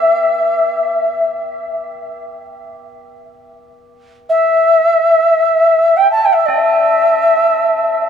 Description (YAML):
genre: world meditative, free-time meditation music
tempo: free time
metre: none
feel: none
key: unclear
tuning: A4 = 440 Hz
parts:
  - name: mellow Native American-style cedar flute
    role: melody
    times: 0.0-8.1 s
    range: D5 to A5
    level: -11 LUFS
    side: left 1 dB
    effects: tape echo
  - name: tubular bells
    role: texture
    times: 0.0-8.1 s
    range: G4 to A4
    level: -26 LUFS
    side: right 1 dB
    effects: none
room: wet huge ambient reverb, RT60 4.3 s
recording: none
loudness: -10 LUFS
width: side -8 dB against mid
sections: 0.0-8.1 A section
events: none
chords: none